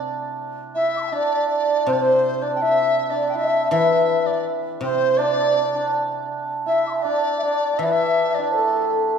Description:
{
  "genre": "chinese traditional, Chinese chamber ensemble",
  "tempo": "81 BPM",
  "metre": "4/4",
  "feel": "straight",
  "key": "unclear",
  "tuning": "A4 = 440 Hz",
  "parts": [
    { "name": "hammered dulcimer", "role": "second line", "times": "0.0-9.2 s", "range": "A3 to G4", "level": "-24 LUFS", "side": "right 4 dB", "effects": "none" },
    { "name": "guzheng", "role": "accompaniment", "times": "0.0-9.2 s", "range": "C3 to E3", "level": "-26 LUFS", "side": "left 5 dB", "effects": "none" },
    { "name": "bright reedy large dizi", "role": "second line", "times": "0.7-9.1 s", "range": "A4 to G5", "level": "-25 LUFS", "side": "left 4 dB", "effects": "none" },
    { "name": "mellow hollow xiao", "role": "melody", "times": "0.8-9.1 s", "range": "A4 to D6", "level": "-22 LUFS", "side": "right 1 dB", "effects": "none" }
  ],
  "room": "wet scoring stage reverb, RT60 2.2 s",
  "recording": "minimal, uncompressed stereo recording",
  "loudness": "-18 LUFS",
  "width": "side -6 dB against mid",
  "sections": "0.0-9.2 A section",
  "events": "none",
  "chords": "none"
}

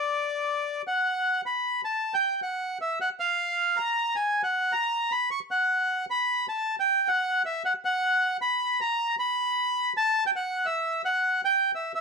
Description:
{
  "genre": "tango",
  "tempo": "154 BPM",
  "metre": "3/4",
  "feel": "rubato",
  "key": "unclear",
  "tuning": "A4 = 440 Hz",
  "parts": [
    { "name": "bandoneon", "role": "solo", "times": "0.0-12.0 s", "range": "D5 to C#6", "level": "-24 LUFS", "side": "equal", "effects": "none" }
  ],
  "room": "moderate studio reverb, RT60 0.6 s",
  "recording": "none",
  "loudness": "-24 LUFS",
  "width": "side -4 dB against mid",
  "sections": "0.0-1.1 A section; 1.1-10.4 B section; 10.4-12.0 A section",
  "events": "none",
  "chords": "none"
}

